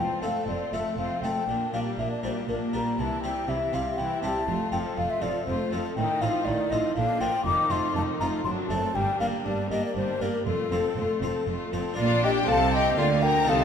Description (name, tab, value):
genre	classical, baroque-style concerto movement with solo episodes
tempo	120 BPM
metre	3/4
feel	straight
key	F major, Bb major from 6.0 s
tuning	A4 = 441 Hz
part	mellow hollow concert flute	melody	0.0-13.6 s	A4 to D6	-28 LUFS	left 2 dB	none
part	rich chamber violin section	melody	0.0-13.6 s	F#4 to Bb5	-38 LUFS	left 4 dB	none
part	rich chamber violin section	second line	0.0-13.6 s	Bb3 to Bb4	-33 LUFS	left 4 dB	none
part	harpsichord	accompaniment	0.0-13.6 s	F2 to C5	-32 LUFS	equal	none
part	rich chamber viola section	accompaniment	0.0-13.6 s	D3 to Eb4	-34 LUFS	right 1 dB	none
part	rich chamber cello section	bass	0.0-13.6 s	F2 to D3	-33 LUFS	right 3 dB	none
part	warm chamber double bass section	bass	0.0-13.6 s	F1 to D2	-33 LUFS	right 3 dB	none
room	wet concert hall reverb, RT60 2.3 s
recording	none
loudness	-24 LUFS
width	side -7 dB against mid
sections	0.0-12.0 A section; 12.0-13.6 B section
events	none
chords	0.0 F; 1.5 Gm/Bb; 3.0 C; 4.5 F; 6.0 F7/A; 7.0 Bb; 7.5 F7; 8.5 D7/F#; 9.0 Gm; 10.5 F; 12.0 Bb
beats	0.48 0.98 | 1.48 1.98 2.48 | 2.98 3.48 3.98 | 4.48 4.97 5.47 | 5.97 6.47 6.96 | 7.46 7.96 8.46 | 8.96 9.46 9.96 | 10.46 10.97 11.47 | 11.98 12.48 12.98 | 13.48